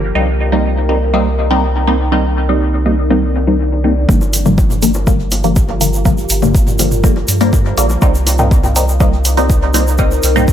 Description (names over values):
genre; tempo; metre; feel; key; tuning
dub techno; 122 BPM; 4/4; straight; G minor; A4 = 436 Hz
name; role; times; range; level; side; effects
deep dark ambient pad; sustained chords; 0.0-10.5 s; Eb4 to D5; -23 LUFS; left 1 dB; chorus, built-in reverb, sidechain pumping
soft dub sub bass; bass; 0.0-10.5 s; G1 to G2; -16 LUFS; equal; sidechain pumping
filtered dub chord stab; stabs; 0.2-10.5 s; D3 to Eb4; -15 LUFS; equal; phaser, sidechain pumping, dub echo
electronic kick drum; drums; 4.1-10.5 s; none; -13 LUFS; equal; overdrive, studio ambience
tube shaker; percussion; 4.1-10.5 s; none; -22 LUFS; right 2 dB; none
electronic bongos and toms; percussion; 4.2-10.5 s; none; -24 LUFS; left 1 dB; overdrive, sidechain pumping on perc, studio ambience, sidechain pumping on toms, dub echo
electronic hi-hat; drums; 4.3-10.3 s; none; -20 LUFS; right 1 dB; studio ambience
room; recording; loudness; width
light reverb, digital ambience; echo-heavy mix; -11 LUFS; side -10 dB against mid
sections
0.0-4.1 A section; 4.1-10.5 B section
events
filter sweep on synth stab 4.1-10.5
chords
0.2 Cm7; 4.1 Gm7; 8.0 Cm7